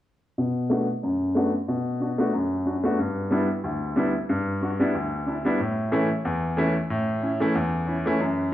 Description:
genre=dancehall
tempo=92 BPM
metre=4/4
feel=swing 56% on 16ths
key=B minor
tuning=A4 = 440 Hz
part: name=clear baby grand piano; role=accompaniment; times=0.4-8.5 s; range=D2 to F#4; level=-22 LUFS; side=equal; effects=low-pass filter
room=moderate lush hall reverb, RT60 2.6 s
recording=dry, gritty hardware recording, studio reverb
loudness=-22 LUFS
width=side -13 dB against mid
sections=0.4-8.5 A section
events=filter sweep on grand piano 0.4-8.5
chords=0.4 Bm7; 3.0 G6; 5.6 A

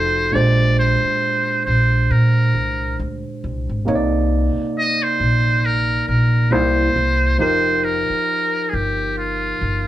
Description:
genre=R&B, neo-soul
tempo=68 BPM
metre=4/4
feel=swing 57% on 16ths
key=C minor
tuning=A4 = 440 Hz
part: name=trumpet with metal mute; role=melody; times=0.0-9.9 s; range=F4 to Eb5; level=-20 LUFS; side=right 1 dB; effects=none
part: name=barky tine electric piano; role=accompaniment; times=0.0-9.9 s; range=Bb2 to D5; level=-22 LUFS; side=right 1 dB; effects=overdrive
part: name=upright bass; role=bass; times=0.0-9.9 s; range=F1 to Bb2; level=-19 LUFS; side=equal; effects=none
room=wet studio ambience, RT60 0.5 s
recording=band playing live in one room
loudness=-16 LUFS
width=side -13 dB against mid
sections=0.0-9.9 A section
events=none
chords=0.3 Bb13; 3.9 Cm9; 6.5 C7; 7.4 F9sus4

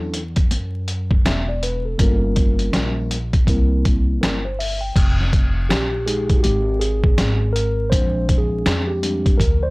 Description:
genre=hip hop, jazz-hop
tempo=81 BPM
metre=4/4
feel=swing 62% on 16ths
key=F minor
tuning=A4 = 440 Hz
part: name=mellow tine electric piano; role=accompaniment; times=0.0-9.7 s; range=F3 to G5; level=-23 LUFS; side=equal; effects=medium stereo tremolo
part: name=upright bass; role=bass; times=0.0-9.7 s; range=E1 to F#2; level=-22 LUFS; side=equal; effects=tube saturation
part: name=trip hop sampler-style drum kit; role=drums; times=0.1-9.6 s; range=crash cymbal, hi-hat, kick drum, snare drum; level=-18 LUFS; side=equal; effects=none
room=little or no reverb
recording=dry, gritty hardware recording, vinyl crackle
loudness=-16 LUFS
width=side -24 dB against mid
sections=0.0-5.0 A section; 5.0-9.7 B section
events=tine electric piano solo 5.0-9.7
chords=0.0 Dadd9; 2.0 Gm7b5; 3.5 C7; 5.0 Fm9; 7.9 Bb13

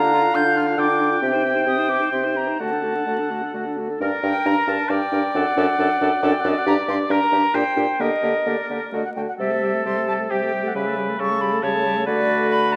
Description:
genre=quick classical-period movement for wind quintet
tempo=125-140 BPM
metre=3/4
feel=rubato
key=G minor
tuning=A4 = 440 Hz
part: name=mellow concert flute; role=melody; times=0.0-12.8 s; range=D5 to G6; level=-26 LUFS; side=equal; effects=none
part: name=clear oboe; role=second line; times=0.0-12.8 s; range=G4 to G5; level=-27 LUFS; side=equal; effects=none
part: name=bright clarinet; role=accompaniment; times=0.0-12.8 s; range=D4 to C5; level=-32 LUFS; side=equal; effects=none
part: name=dark French horn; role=accompaniment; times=0.0-12.8 s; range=G3 to F4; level=-29 LUFS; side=equal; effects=none
part: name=mellow bassoon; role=bass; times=0.0-12.8 s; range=F#2 to D3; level=-27 LUFS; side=equal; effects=none
room=wet recital hall reverb, RT60 1.7 s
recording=vinyl crackle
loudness=-21 LUFS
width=mono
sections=0.0-4.0 A section; 4.0-12.8 B section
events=none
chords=0.0 Bb/D; 1.2 Cm; 2.6 D; 4.0 Gm; 5.3 D/F#; 6.7 Gm; 7.5 Gm/Bb; 8.0 Gm/D; 8.9 D; 9.4 Am7/C; 10.7 A7/C#; 12.1 D

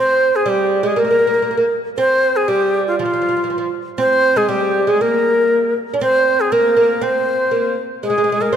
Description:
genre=Arabic maqam ensemble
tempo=119 BPM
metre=4/4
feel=straight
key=C maqam bayati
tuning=A4 = 440 Hz
part: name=breathy bright ney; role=melody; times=0.0-8.6 s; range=F4 to C5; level=-15 LUFS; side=left 1 dB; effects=none
part: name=oud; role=second line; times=0.0-8.6 s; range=F3 to D4-50c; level=-19 LUFS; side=right 3 dB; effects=none
room=moderate concert hall reverb, RT60 2.3 s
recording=dark, warm production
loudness=-14 LUFS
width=side -8 dB against mid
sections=0.0-8.6 A section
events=none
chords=none

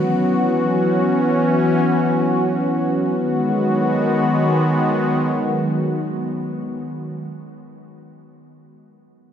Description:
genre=hip hop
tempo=free time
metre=none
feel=none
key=G# minor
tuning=A4 = 440 Hz
part: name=sweeping resonant pad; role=sustained chords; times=0.0-7.3 s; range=D#3 to F#4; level=-17 LUFS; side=equal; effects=lush chorus
room=moderate huge ambient reverb, RT60 6.4 s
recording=none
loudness=-17 LUFS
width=side -8 dB against mid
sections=0.0-3.2 A section; 3.2-6.5 B section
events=none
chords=0.0 F#7sus4; 3.2 G#m7

